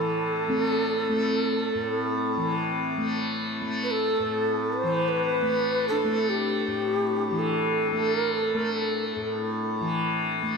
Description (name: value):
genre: world meditative, free-time meditation music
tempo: free time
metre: none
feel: none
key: A minor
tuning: A4 = 440 Hz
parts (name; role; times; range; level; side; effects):
- breathy mellow Native American-style cedar flute; melody; 0.0-9.5 s; G4 to C5; -27 LUFS; right 1 dB; shimmer reverb, diffuse ambient delay
- tanpura; drone; 0.0-10.6 s; A2 to A3; -27 LUFS; left 1 dB; none
- quartz singing bowl; texture; 0.0-10.6 s; C4 to D4; -35 LUFS; left 1 dB; stereo widening, shimmer reverb
room: wet scoring stage reverb, RT60 2.1 s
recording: none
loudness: -24 LUFS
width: side -4 dB against mid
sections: 0.0-10.6 A section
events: none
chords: none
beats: free time